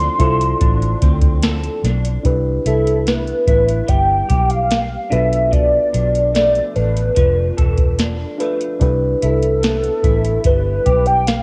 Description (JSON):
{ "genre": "indie pop, bedroom pop", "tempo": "73 BPM", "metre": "4/4", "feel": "straight", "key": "C major", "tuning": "A4 = 440 Hz", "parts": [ { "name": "warbly nostalgic lead", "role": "melody", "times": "0.0-11.4 s", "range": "A4 to C6", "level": "-20 LUFS", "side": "equal", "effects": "tremolo, analog chorus, cassette tape" }, { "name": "electric guitar through a small old amp", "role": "accompaniment", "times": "0.0-11.4 s", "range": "B2 to A4", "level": "-29 LUFS", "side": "equal", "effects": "ensemble chorus, warbly pitch drift" }, { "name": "reed electric piano", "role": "accompaniment", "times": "0.0-11.4 s", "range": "D4 to C5", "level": "-27 LUFS", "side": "equal", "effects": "cassette tape" }, { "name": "vintage muted fingered electric bass", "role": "bass", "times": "0.0-11.4 s", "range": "E1 to D2", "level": "-21 LUFS", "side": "equal", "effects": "none" }, { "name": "soft vintage rhythm box", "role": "drums", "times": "0.0-11.4 s", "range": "hi-hat, kick drum, snare drum", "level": "-20 LUFS", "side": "equal", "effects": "cassette tape" } ], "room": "light reverb, digital ambience", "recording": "home recording on cassette", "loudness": "-16 LUFS", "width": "mono", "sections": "0.0-2.2 A section; 2.2-11.4 B section", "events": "none", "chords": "0.0 Dm7; 2.2 Cmaj7; 5.1 Bm7b5; 8.8 Cmaj7" }